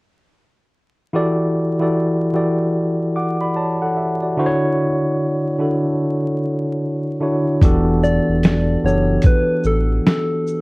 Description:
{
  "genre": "lo-fi hip hop",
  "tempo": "74 BPM",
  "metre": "4/4",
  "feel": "swing 65% on 16ths",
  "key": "unclear",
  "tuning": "A4 = 440 Hz",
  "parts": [
    { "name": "tine electric piano", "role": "accompaniment", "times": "1.1-10.6 s", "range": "D3 to D6", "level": "-18 LUFS", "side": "equal", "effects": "medium stereo tremolo, low-pass filter" },
    { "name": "round analog bass", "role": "bass", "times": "7.6-10.0 s", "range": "E1 to A1", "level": "-19 LUFS", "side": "equal", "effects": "none" },
    { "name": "boom bap sampler-style drum kit", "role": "drums", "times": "7.6-10.6 s", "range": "hi-hat, kick drum, shaker, snare drum", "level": "-14 LUFS", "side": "equal", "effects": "none" },
    { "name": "soft struck synth lead", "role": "melody", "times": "8.0-10.6 s", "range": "A4 to D5", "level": "-21 LUFS", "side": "equal", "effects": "chorus, low-pass filter" }
  ],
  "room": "moderate studio reverb, RT60 0.7 s",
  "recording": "worn, warbling old tape, cassette tape, vinyl crackle, warbly pitch drift",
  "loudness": "-16 LUFS",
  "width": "side -24 dB against mid",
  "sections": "1.1-7.6 A section; 7.6-10.6 B section",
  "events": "none",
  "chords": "1.1 Em11; 4.4 Dmaj7; 7.6 Em11",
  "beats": "| 1.13 1.94 2.75 3.56 | 4.37 5.18 5.99 6.80 | 7.61 8.42 9.23 10.05"
}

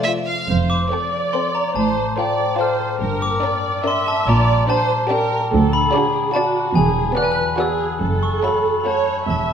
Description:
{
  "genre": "cinematic, playful, whimsical film cue",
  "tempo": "143 BPM",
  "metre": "3/4",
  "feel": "straight",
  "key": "F major",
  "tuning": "A4 = 435 Hz",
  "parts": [
    { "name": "rich chamber violin section", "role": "melody", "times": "0.0-9.2 s", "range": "C5 to F5", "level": "-28 LUFS", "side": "left 2 dB", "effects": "none" },
    { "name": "dark studio viola section", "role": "accompaniment", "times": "0.0-9.5 s", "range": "A3 to E5", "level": "-22 LUFS", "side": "right 4 dB", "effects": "none" },
    { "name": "concert harp", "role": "arpeggios", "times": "0.0-9.5 s", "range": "E2 to D6", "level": "-26 LUFS", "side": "left 6 dB", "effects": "none" },
    { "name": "warm chamber violin section", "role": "second line", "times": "0.1-9.2 s", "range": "A3 to Bb4", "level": "-27 LUFS", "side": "left 1 dB", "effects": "none" },
    { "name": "dark chamber cello section", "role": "bass", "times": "0.5-9.5 s", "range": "D2 to Bb2", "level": "-22 LUFS", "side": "right 3 dB", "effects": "none" },
    { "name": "rich chamber double bass section", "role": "bass", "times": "0.5-9.5 s", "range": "E1 to D2", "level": "-24 LUFS", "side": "right 3 dB", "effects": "none" },
    { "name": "glockenspiel with hard plastic mallets", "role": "melody", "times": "0.7-9.5 s", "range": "G5 to F#6", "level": "-21 LUFS", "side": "left 3 dB", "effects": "none" }
  ],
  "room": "wet scoring stage reverb, RT60 1.4 s",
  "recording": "none",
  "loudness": "-16 LUFS",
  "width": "side -8 dB against mid",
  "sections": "0.5-9.5 A section",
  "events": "none",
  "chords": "0.5 F; 1.8 F/A; 3.0 Gm; 4.3 Gm/Bb; 5.5 D; 6.8 E9; 8.0 F#m",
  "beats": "0.06 | 0.49 0.92 1.34 | 1.76 2.17 2.59 | 3.01 3.43 3.86 | 4.28 4.69 5.11 | 5.52 5.93 6.35 | 6.76 7.17 7.59 | 8.01 8.44 8.86 | 9.30"
}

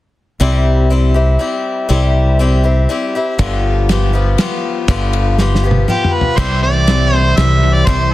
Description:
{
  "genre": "folk rock and heartland rock",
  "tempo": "120 BPM",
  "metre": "3/4",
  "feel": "straight",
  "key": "C major",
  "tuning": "A4 = 436 Hz",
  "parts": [
    { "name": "picked swing-style acoustic guitar", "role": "accompaniment", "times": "0.4-8.1 s", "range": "G2 to G4", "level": "-17 LUFS", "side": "left 3 dB", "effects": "none" },
    { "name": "fingered electric bass", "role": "bass", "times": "0.4-8.1 s", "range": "G1 to C2", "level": "-13 LUFS", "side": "equal", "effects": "none" },
    { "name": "damped 70s drum kit", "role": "drums", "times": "3.4-8.0 s", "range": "kick drum, ride cymbal, snare drum, toms", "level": "-18 LUFS", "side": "equal", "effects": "none" },
    { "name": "mellow harmonica", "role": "melody", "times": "5.9-8.1 s", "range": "G4 to E5", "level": "-16 LUFS", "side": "right 1 dB", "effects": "slapback echo" },
    { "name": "overdriven electric guitar", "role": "riff", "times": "6.4-8.1 s", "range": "C3 to G3", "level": "-20 LUFS", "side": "right 1 dB", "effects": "spring reverb" }
  ],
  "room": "light reverb, small room ambience",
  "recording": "dense, heavily limited modern master",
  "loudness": "-11 LUFS",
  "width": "side -16 dB against mid",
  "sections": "0.4-6.4 A section; 6.4-8.1 B section",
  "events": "drum fill 5.4-6.4",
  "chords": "0.4 C; 3.4 G7; 6.4 C",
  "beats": "| 0.41 0.91 1.41 | 1.91 2.40 2.90 | 3.40 3.90 4.39 | 4.89 5.39 5.89 | 6.38 6.88 7.38 | 7.88"
}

